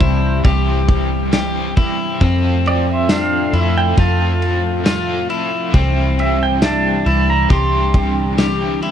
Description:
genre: dream pop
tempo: 68 BPM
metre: 4/4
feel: straight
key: unclear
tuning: A4 = 445 Hz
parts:
  - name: pedal steel guitar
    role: melody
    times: 0.0-8.1 s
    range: C5 to C6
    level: -22 LUFS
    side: right 5 dB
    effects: ping-pong delay, shimmer reverb
  - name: overdriven electric guitar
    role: accompaniment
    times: 0.0-8.9 s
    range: C3 to A4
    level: -26 LUFS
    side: right 1 dB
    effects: tremolo, lush chorus, shimmer reverb
  - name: string machine, cellos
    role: sustained chords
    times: 0.0-8.9 s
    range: C3 to A4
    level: -22 LUFS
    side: equal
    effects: ensemble chorus
  - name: electric guitar at the edge of break-up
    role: arpeggios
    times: 0.0-8.9 s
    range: C4 to G4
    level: -21 LUFS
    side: left 4 dB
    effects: wide subtle chorus, ping-pong delay, shimmer reverb
  - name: vintage muted fingered electric bass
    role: bass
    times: 0.0-8.8 s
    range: C2 to F2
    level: -18 LUFS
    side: equal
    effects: none
  - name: loose indie drum kit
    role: drums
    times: 0.0-8.9 s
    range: kick drum, ride cymbal, snare drum, tambourine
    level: -16 LUFS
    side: equal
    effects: none
  - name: celesta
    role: texture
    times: 0.0-8.9 s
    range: E5 to C6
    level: -33 LUFS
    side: right 3 dB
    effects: ping-pong delay, shimmer reverb
room: light reverb, small room ambience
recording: dark, warm production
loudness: -14 LUFS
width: side -9 dB against mid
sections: 0.0-8.9 A section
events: none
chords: 0.0 C; 2.2 F; 5.7 C

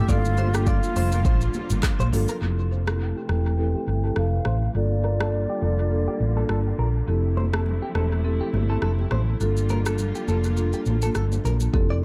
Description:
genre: afrobeats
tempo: 103 BPM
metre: 4/4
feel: swing 55% on 16ths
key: unclear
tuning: A4 = 441 Hz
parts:
  - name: mellow silver concert flute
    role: melody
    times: 0.0-6.8 s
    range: F4 to A5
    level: -35 LUFS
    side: equal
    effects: low-pass filter, dub echo
  - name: bright studio string section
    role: sustained chords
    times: 0.0-11.7 s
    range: C3 to F4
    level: -38 LUFS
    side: equal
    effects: sidechain pumping, low-pass filter
  - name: direct-recorded clean electric guitar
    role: riff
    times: 0.0-12.0 s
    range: G4 to D5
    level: -38 LUFS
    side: equal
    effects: lush chorus, low-pass filter, dub echo
  - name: marimba with medium mallets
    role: accompaniment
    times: 0.1-12.0 s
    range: Bb3 to A4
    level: -32 LUFS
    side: equal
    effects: low-pass filter, dub echo
  - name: hollow-body short-scale fingered electric bass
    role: bass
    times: 0.1-12.0 s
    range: E1 to Bb1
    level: -25 LUFS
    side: equal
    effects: none
  - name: afro-pop drum kit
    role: drums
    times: 0.1-11.9 s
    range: handclaps, hi-hat, kick drum, rim click, shaker, toms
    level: -29 LUFS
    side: equal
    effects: dub echo
  - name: congas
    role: percussion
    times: 0.4-2.3, 7.4-11.6 s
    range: none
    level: -36 LUFS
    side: equal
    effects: dub echo
room: small room ambience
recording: echo-heavy mix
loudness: -23 LUFS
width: mono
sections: 0.0-2.4 A section; 2.4-11.7 B section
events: filter sweep 2.4-11.7; kick muted 10.6-11.7; hi-hats muted 11.7-12.0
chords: 0.1 Gm7; 2.4 Fmaj7; 4.7 Gm7; 7.1 Fmaj7; 9.4 Gm7

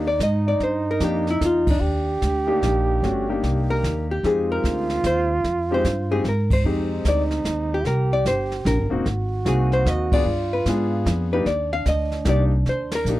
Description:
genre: jazz, small-group swing and bop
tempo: 149 BPM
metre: 3/4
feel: swing 64% on 8ths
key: C minor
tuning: A4 = 437 Hz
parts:
  - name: archtop guitar, miked and amplified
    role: melody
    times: 0.0-13.2 s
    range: D4 to F5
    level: -24 LUFS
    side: left 1 dB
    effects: none
  - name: clear trombone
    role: second line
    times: 0.0-13.2 s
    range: D4 to G4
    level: -26 LUFS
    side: right 3 dB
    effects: none
  - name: clear grand piano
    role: accompaniment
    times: 0.0-13.2 s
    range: Ab3 to Ab4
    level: -26 LUFS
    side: left 3 dB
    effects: none
  - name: upright bass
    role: bass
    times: 0.0-13.2 s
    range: Eb1 to Ab2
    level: -23 LUFS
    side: equal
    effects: none
  - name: jazz brush drum kit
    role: drums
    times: 0.2-13.2 s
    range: brushed snare drum, hi-hat, kick drum, ride cymbal, snare drum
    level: -27 LUFS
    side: equal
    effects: none
room: little or no reverb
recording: dry, close 1970s-style studio recording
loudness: -19 LUFS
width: side -16 dB against mid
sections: 0.0-13.2 A section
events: band accent 1.6, 6.4, 10.1, 12.9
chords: 0.0 Cm9 (rootless); 4.2 Fm9; 7.9 Cm7; 9.1 Ab7; 10.3 G7b9; 11.5 Cm9

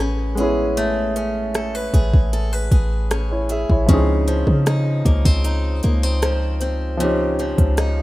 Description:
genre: contemporary R&B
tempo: 77 BPM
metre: 4/4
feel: straight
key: unclear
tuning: A4 = 440 Hz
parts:
  - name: warm grand piano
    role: accompaniment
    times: 0.0-8.0 s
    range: F3 to E5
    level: -24 LUFS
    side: equal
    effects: none
  - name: picked swing-style acoustic guitar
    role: arpeggios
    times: 0.0-8.0 s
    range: Db3 to B4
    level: -25 LUFS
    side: left 1 dB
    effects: tape echo
  - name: warm 808-style bass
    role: bass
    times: 0.0-8.0 s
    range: A1 to Db3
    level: -20 LUFS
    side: equal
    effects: none
  - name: smooth R&B drum kit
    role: drums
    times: 0.4-8.0 s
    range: hi-hat, kick drum, rim click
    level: -20 LUFS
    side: equal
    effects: none
room: studio reverb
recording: rough home demo mix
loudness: -16 LUFS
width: side -17 dB against mid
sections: 0.0-8.0 A section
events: none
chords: 0.0 Amaj9; 3.9 Dbmaj9

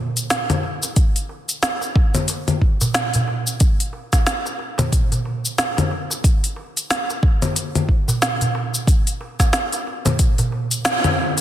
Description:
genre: downtempo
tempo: 91 BPM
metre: 4/4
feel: swing 59% on 16ths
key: none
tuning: none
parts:
  - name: organic electronic drum kit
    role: drums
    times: 0.2-11.4 s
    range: congas, hi-hat, shaker, snare drum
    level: -20 LUFS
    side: left 1 dB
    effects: none
  - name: darbuka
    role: percussion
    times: 0.5-11.4 s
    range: none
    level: -25 LUFS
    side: right 2 dB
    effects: none
  - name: electronic kick drum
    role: drums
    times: 1.0-10.3 s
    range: none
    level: -16 LUFS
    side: equal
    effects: none
room: moderate lush hall reverb, RT60 2.4 s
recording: dense, heavily limited modern master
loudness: -17 LUFS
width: side -12 dB against mid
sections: 0.0-11.4 A section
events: band accent 10.9-11.2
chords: none

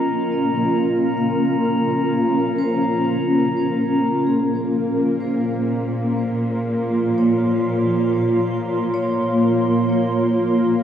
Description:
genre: ambient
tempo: free time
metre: none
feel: none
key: Bb minor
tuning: A4 = 438 Hz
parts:
  - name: granular cloud pad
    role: sustained chords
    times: 0.0-10.8 s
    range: Bb3 to C6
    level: -18 LUFS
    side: equal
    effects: built-in reverb
  - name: vibraphone with hard mallets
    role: arpeggios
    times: 0.0-10.8 s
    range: Ab4 to F5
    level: -32 LUFS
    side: equal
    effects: tape echo
  - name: glass harmonica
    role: texture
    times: 0.0-4.1 s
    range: Bb5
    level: -27 LUFS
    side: left 2 dB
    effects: none
  - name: dark symphonic cello section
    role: bass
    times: 4.0-10.8 s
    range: Bb2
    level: -27 LUFS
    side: equal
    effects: none
  - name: bowed-like drone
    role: drone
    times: 4.6-10.8 s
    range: Bb3 to Bb4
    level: -28 LUFS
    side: left 2 dB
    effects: built-in reverb
room: wet lush hall reverb, RT60 2.9 s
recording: dreamy mix soaked in reverb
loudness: -17 LUFS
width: side -9 dB against mid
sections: 0.0-4.0 A section; 4.0-10.8 B section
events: none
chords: 0.0 Bbmadd9; 4.0 Bbm7

